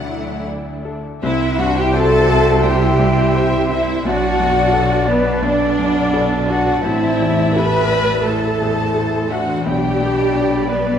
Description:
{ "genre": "cinematic, emotional film score for orchestra", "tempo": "86 BPM", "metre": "4/4", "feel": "rubato", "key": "unclear", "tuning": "A4 = 437 Hz", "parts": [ { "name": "rich studio violin section", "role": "melody", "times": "0.0-11.0 s", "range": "B4 to F#5", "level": "-31 LUFS", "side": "left 3 dB", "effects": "none" }, { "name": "warm studio violin section", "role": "second line", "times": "0.0-11.0 s", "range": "E4 to B5", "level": "-26 LUFS", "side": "left 2 dB", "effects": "none" }, { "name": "bright grand piano", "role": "accompaniment", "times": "0.0-11.0 s", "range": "A1 to E5", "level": "-24 LUFS", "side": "left 1 dB", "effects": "none" }, { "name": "rich studio viola section", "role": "accompaniment", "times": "0.0-11.0 s", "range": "A3 to B4", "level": "-20 LUFS", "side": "right 2 dB", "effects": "none" }, { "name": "concert harp", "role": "arpeggios", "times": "0.0-11.0 s", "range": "A2 to E6", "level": "-28 LUFS", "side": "left 8 dB", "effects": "none" }, { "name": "rich studio cello section", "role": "bass", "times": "0.0-11.0 s", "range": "A2 to F#3", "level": "-26 LUFS", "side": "right 1 dB", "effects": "none" }, { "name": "warm symphonic double bass section", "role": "bass", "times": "0.0-11.0 s", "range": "A1 to D2", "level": "-23 LUFS", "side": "right 4 dB", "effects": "none" }, { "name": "clear clarinet", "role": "second line", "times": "1.2-11.0 s", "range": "D5 to E5", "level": "-26 LUFS", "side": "equal", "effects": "none" }, { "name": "concert flute", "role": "second line", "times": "1.2-11.0 s", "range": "B4 to B5", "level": "-25 LUFS", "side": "left 2 dB", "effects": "none" }, { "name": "warm oboe", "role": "second line", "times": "1.2-11.0 s", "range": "A5 to C6", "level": "-29 LUFS", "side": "right 2 dB", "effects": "none" }, { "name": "dark French horn section", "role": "sustained chords", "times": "1.2-11.0 s", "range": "F#3 to G4", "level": "-22 LUFS", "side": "left 4 dB", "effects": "none" } ], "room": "moderate scoring stage reverb, RT60 1.9 s", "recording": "none", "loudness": "-14 LUFS", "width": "side -8 dB against mid", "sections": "0.0-1.2 A section; 1.2-11.0 B section", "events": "none", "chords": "0.0 Dadd9; 1.2 C; 4.0 Bm7; 6.8 Am; 9.6 G/B" }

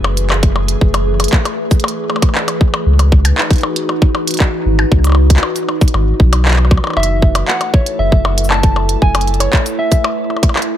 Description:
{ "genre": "IDM", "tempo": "117 BPM", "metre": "4/4", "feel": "straight", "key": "F# minor", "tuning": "A4 = 440 Hz", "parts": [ { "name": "glassy FM pad", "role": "sustained chords", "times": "0.0-10.8 s", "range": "E3 to B4", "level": "-20 LUFS", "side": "equal", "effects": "ensemble chorus, built-in reverb, sidechain pumping" }, { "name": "warm sub bass", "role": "bass", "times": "0.0-9.5 s", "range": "F#1 to C#2", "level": "-13 LUFS", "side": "equal", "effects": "none" }, { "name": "glitchy drum kit", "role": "drums", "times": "0.0-10.7 s", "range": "handclaps, hi-hat, percussion blips, shaker", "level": "-18 LUFS", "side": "left 1 dB", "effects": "none" }, { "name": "electronic kick drum", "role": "drums", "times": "0.4-10.5 s", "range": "none", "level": "-11 LUFS", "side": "equal", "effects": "none" }, { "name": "mellow electric guitar", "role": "melody", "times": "7.0-10.5 s", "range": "C#5 to A5", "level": "-18 LUFS", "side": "equal", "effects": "ping-pong delay" } ], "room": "digital ambience", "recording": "none", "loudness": "-11 LUFS", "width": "side -11 dB against mid", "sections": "0.0-10.8 A section", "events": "none", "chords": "0.0 F#m11; 2.9 C#m11; 7.0 F#m7" }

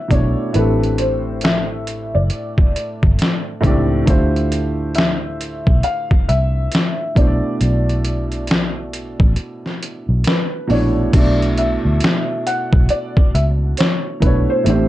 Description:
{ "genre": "lo-fi hip hop", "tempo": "68 BPM", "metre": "4/4", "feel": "swing 61% on 16ths", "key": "B phrygian", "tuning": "A4 = 440 Hz", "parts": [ { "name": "felt-muted upright piano", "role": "melody", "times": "0.0-14.9 s", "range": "B4 to F#5", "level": "-23 LUFS", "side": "left 1 dB", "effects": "low-pass filter, plate reverb" }, { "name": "dark upright piano", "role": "accompaniment", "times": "0.0-14.9 s", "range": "A2 to D5", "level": "-21 LUFS", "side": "right 1 dB", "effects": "low-pass filter" }, { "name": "vintage muted fingered electric bass", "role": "bass", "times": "0.1-14.9 s", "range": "F#1 to D2", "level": "-18 LUFS", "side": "equal", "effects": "none" }, { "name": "trip hop sampler-style drum kit", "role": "drums", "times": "0.1-14.9 s", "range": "crash cymbal, hi-hat, kick drum, snare drum", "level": "-16 LUFS", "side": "equal", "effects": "overdrive" } ], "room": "light reverb", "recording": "dark, warm production", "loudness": "-15 LUFS", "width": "side -15 dB against mid", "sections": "0.0-11.1 A section; 11.1-14.9 B section", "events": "kick muted 9.4-11.1", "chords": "0.0 Bm11; 0.5 Am7; 4.1 Dm11; 7.2 Bm11" }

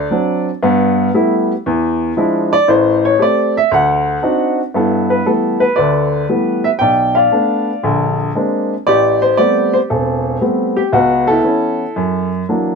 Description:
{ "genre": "solo jazz", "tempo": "116 BPM", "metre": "4/4", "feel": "swing 69% on 8ths", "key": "G major", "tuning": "A4 = 438 Hz", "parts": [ { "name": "warm upright piano", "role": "solo", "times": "0.0-12.8 s", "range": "E1 to G5", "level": "-12 LUFS", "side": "equal", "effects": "none" } ], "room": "light reverb", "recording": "none", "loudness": "-12 LUFS", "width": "side -5 dB against mid", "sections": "0.0-4.7 A section; 4.7-12.8 B section", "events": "upright piano solo 0.0-4.7", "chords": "0.0 D7; 0.6 G69; 1.7 E7b9; 2.7 Am7; 3.7 D7b9; 4.7 G69; 6.8 Bm7b5; 7.8 Bb9; 8.9 Am9; 10.9 A69/C#; 12.0 F#aug7" }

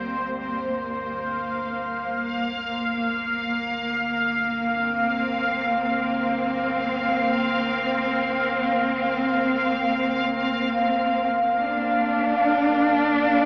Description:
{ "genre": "dark ambient drone", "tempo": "free time", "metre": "none", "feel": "none", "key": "unclear", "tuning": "A4 = 442 Hz", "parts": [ { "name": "warm symphonic cello section", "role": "sustained chords", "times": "0.0-13.5 s", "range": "G3 to D4", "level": "-24 LUFS", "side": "equal", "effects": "none" }, { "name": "deep rumbling drone", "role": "drone", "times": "0.0-13.5 s", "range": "G1 to D2", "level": "-44 LUFS", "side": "equal", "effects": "built-in reverb, lush chorus" }, { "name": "bubbling stepped-filter texture", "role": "texture", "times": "0.0-13.5 s", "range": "C5 to F5", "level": "-24 LUFS", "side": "equal", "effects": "chorus, built-in reverb" } ], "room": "wet huge ambient reverb, RT60 7.7 s", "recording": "worn, warbling old tape, cassette tape, warbly pitch drift, AM radio sound", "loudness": "-21 LUFS", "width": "side -38 dB against mid", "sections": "0.0-13.5 A section", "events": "none", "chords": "0.0 Gm" }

